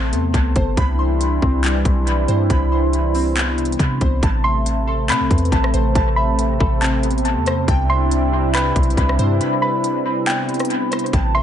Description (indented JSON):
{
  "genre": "hip hop, atmospheric cloud-rap",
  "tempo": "139 BPM",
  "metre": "4/4",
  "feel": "half-time",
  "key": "C major",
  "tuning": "A4 = 444 Hz",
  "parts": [
    { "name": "warm analog pad", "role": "sustained chords", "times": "0.0-11.4 s", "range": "C3 to E4", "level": "-23 LUFS", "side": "right 2 dB", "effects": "wide subtle chorus, sidechain pumping" },
    { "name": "glassy digital keys", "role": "arpeggios", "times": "0.0-11.4 s", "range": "C3 to C6", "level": "-23 LUFS", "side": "left 2 dB", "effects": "chorus, dub echo" },
    { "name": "soft 808-style bass", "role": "bass", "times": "0.0-11.4 s", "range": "G1 to C3", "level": "-19 LUFS", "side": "equal", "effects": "none" },
    { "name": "trap drum kit", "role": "drums", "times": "0.1-11.2 s", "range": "handclaps, hi-hat, kick drum, rim click", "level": "-22 LUFS", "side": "equal", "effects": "dub echo" },
    { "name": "soft round pluck", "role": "melody", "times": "4.4-11.4 s", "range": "G5 to C6", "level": "-24 LUFS", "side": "right 1 dB", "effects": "chorus, dub echo" }
  ],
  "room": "little or no reverb",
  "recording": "echo-heavy mix, nothing above 10.4 kHz",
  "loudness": "-16 LUFS",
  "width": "side -10 dB against mid",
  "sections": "0.0-4.2 A section; 4.2-11.4 B section",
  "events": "break 9.4-11.1",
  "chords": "0.0 Amadd9; 0.8 Cmaj7; 4.2 Amadd9; 7.7 Cmaj7"
}